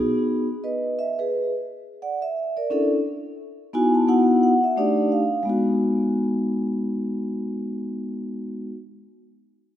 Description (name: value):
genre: hip hop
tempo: 87 BPM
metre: 4/4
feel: swing 59% on 16ths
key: unclear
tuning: A4 = 440 Hz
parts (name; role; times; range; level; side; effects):
- vibraphone with soft mallets; accompaniment; 0.0-8.7 s; G#3 to A5; -21 LUFS; equal; none
room: wet lush hall reverb, RT60 2.0 s, studio ambience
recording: rough home demo mix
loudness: -21 LUFS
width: side -12 dB against mid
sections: 0.0-5.5 A section; 5.5-8.2 B section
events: vibraphone fill 3.4-5.5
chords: 0.0 B6; 1.3 N.C.; 2.7 Bm11; 4.1 Badd11; 4.8 F13/A; 5.5 G#m7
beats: 0.64 1.33 2.02 | 2.71 3.40 4.08 4.77 | 5.46 6.15 6.84 7.53